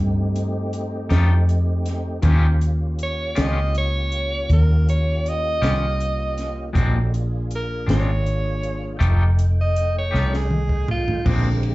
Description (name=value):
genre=slow blues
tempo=53 BPM (dotted quarters)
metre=12/8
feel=straight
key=unclear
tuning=A4 = 440 Hz
part: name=tonewheel organ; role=sustained chords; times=0.0-11.7 s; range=D3 to G5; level=-31 LUFS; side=right 1 dB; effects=slow rotary speaker, overdrive, chorus vibrato
part: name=vintage muted fingered electric bass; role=bass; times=0.0-11.7 s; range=F1 to G2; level=-20 LUFS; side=equal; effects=none
part: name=compact cocktail drum kit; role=drums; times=0.4-11.7 s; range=crash cymbal, hi-hat, kick drum, ride cymbal, snare drum, toms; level=-25 LUFS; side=equal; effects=none
part: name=electric guitar at the edge of break-up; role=accompaniment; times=1.1-11.5 s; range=Bb2 to G4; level=-27 LUFS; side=left 3 dB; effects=harmonic tremolo, slapback echo
part: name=clear tenor saxophone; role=melody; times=3.0-11.3 s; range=F4 to Eb5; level=-26 LUFS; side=right 1 dB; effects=slapback echo
room=little or no reverb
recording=live gig heard through the venue's PA, club reverb, nothing above 7.8 kHz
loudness=-18 LUFS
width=side -19 dB against mid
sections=0.0-11.3 A section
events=drum fill 10.1-11.3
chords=0.0 F9; 2.2 Eb9; 6.8 Bb9; 9.0 F9